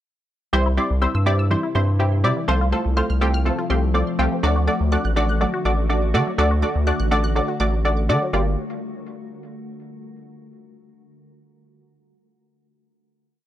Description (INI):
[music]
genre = pop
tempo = 123 BPM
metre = 4/4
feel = straight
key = unclear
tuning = A4 = 439 Hz
[part]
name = punchy chord stab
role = accompaniment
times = 0.5-8.6 s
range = G3 to D5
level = -22 LUFS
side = equal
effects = chorus
[part]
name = glassy FM pad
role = sustained chords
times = 1.1-8.6 s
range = C3 to F#4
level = -30 LUFS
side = left 1 dB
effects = ensemble chorus, built-in reverb
[part]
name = resonant blip pluck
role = arpeggios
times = 0.5-8.6 s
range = E3 to F#6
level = -30 LUFS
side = left 1 dB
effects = phaser, tape echo
[part]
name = round analog bass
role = bass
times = 0.5-8.6 s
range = G1 to D3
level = -20 LUFS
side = equal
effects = none
[sound]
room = little or no reverb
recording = dry, gritty hardware recording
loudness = -18 LUFS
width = side -12 dB against mid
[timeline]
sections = 0.5-8.3 pre-chorus; 8.3-10.3 final chord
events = none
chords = 0.5 C; 2.5 F/C; 4.4 D; 8.3 Gm7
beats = | 0.53 1.02 1.51 1.99 | 2.48 2.97 3.46 3.94 | 4.43 4.92 5.41 5.90 | 6.38 6.87 7.36 7.85 | 8.34